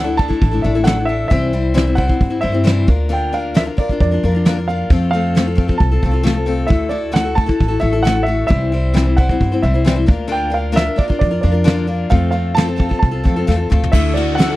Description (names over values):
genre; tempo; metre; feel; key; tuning
folk rock and heartland rock; 133 BPM; 4/4; straight; unclear; A4 = 440 Hz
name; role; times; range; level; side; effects
warm concert grand piano; melody; 0.0-14.6 s; D5 to A5; -22 LUFS; right 2 dB; none
picked steel-string acoustic guitar; accompaniment; 0.0-14.6 s; C3 to C5; -20 LUFS; left 4 dB; none
upright bass; bass; 0.0-14.6 s; A1 to G2; -18 LUFS; equal; none
soft brush drum kit; drums; 0.2-14.5 s; crash cymbal, hi-hat, kick drum, ride cymbal, snare drum, toms; -16 LUFS; equal; none
crunchy overdriven guitar; riff; 13.9-14.6 s; D3 to F#4; -21 LUFS; equal; none
room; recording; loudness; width
little or no reverb; dry, close 1970s-style studio recording; -13 LUFS; side -17 dB against mid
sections
0.0-13.9 A section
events
drum fill 13.5-13.9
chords
0.0 Dadd9; 1.3 C; 2.9 Bb/D; 4.9 F; 6.7 Dadd9; 8.5 C; 10.1 Bb/D; 12.1 F; 13.9 Dadd9